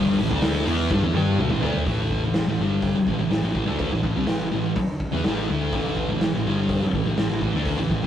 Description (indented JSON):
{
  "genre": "garage rock duo or trio",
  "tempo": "124 BPM",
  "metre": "4/4",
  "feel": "straight",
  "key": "unclear",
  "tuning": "A4 = 440 Hz",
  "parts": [
    { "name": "thick fuzz guitar", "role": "riff", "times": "0.0-8.1 s", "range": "G2 to G4", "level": "-23 LUFS", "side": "equal", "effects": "distortion" },
    { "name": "hollow-body short-scale picked electric bass", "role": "bass", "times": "0.0-8.1 s", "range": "G1 to G2", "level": "-28 LUFS", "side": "left 1 dB", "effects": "overdrive" },
    { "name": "raw garage drum kit", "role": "drums", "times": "0.2-8.0 s", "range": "hi-hat, kick drum, snare drum, toms", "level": "-26 LUFS", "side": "equal", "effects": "none" }
  ],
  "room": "light reverb",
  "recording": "rough rehearsal-room recording, tube saturation",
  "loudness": "-20 LUFS",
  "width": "side -10 dB against mid",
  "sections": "0.0-1.9 A section; 1.9-8.1 B section",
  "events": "drum fill 0.9-1.9",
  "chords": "0.0 A5",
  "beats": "0.42 0.90 1.38 | 1.86 2.35 2.83 3.31 | 3.79 4.28 4.76 5.25 | 5.73 6.21 6.70 7.18 | 7.66"
}